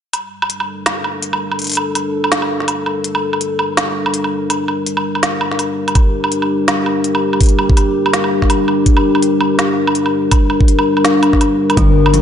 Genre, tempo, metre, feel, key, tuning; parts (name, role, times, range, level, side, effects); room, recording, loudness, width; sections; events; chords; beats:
half-time drum and bass; 165 BPM; 4/4; swing 58% on 16ths, half-time; G minor; A4 = 441 Hz
dark analog pad; sustained chords; 0.1-12.2 s; G3 to Bb4; -16 LUFS; left 1 dB; chorus, sidechain pumping
organic electronic drum kit; drums; 0.1-12.2 s; hi-hat, snare drum, woodblock; -18 LUFS; right 1 dB
electronic kick drum; drums; 6.0-11.9 s; -12 LUFS; equal
kalimba; arpeggios; 11.8-12.2 s; F3 to G3; -21 LUFS; right 2 dB
growling 808-style bass; bass; 11.8-12.2 s; G1; -12 LUFS; equal
wet lush hall reverb, RT60 1.9 s; dreamy mix soaked in reverb, nothing above 10.8 kHz; -13 LUFS; side -9 dB against mid
0.1-11.8 A section
0.1 Gm
| 0.14 0.50 0.86 1.23 | 1.59 1.95 2.32 2.68 | 3.04 3.41 3.77 4.14 | 4.50 4.86 5.23 5.59 | 5.95 6.32 6.68 7.04 | 7.41 7.77 8.14 8.50 | 8.86 9.23 9.59 9.95 | 10.32 10.68 11.04 11.41 | 11.77 12.14